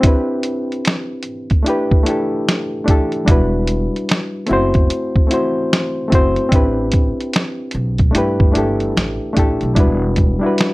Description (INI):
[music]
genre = lo-fi hip hop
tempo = 74 BPM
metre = 4/4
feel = swing 64% on 16ths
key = E minor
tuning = A4 = 440 Hz
[part]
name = reed electric piano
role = accompaniment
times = 0.0-10.7 s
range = G3 to C5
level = -18 LUFS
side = left 1 dB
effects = cassette tape, low-pass filter
[part]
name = lo-fi sampler-style drum kit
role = drums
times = 0.0-10.7 s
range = hi-hat, kick drum, snare drum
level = -15 LUFS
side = equal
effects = none
[part]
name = upright bass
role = bass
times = 3.3-10.3 s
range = E1 to G2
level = -21 LUFS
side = equal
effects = none
[sound]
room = light reverb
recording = none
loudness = -14 LUFS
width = side -21 dB against mid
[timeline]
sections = 0.0-9.8 A section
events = break 0.0-3.3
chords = 0.0 Cmaj9; 1.7 G69; 3.3 Em9; 4.5 F#m7b5; 6.5 Am11; 8.1 G69; 9.8 Em9